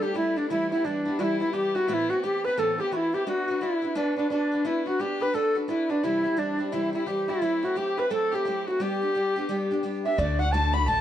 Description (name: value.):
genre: celtic folk, Celtic hornpipe.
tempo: 173 BPM.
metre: 4/4.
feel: swing 62% on 8ths.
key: G major.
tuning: A4 = 440 Hz.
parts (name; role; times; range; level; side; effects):
hollow wooden flute; melody; 0.0-11.0 s; D4 to B5; -26 LUFS; equal; none.
dark fiddle; second line; 0.0-11.0 s; D4 to B5; -33 LUFS; left 4 dB; none.
open-back banjo; second line; 0.0-11.0 s; D4 to B5; -34 LUFS; right 7 dB; none.
picked steel-string acoustic guitar; accompaniment; 0.0-11.0 s; D2 to B4; -31 LUFS; left 1 dB; none.
upright bass; bass; 10.2-11.0 s; A1 to D2; -25 LUFS; equal; none.
room: moderate studio reverb, RT60 0.6 s.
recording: dark, warm production.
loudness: -24 LUFS.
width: side -11 dB against mid.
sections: 0.0-10.2 A section.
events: none.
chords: 0.0 Gadd9; 0.5 Em; 1.9 Amadd9; 3.3 Bm; 6.0 C; 7.4 F#m7b5; 8.8 G; 10.2 D.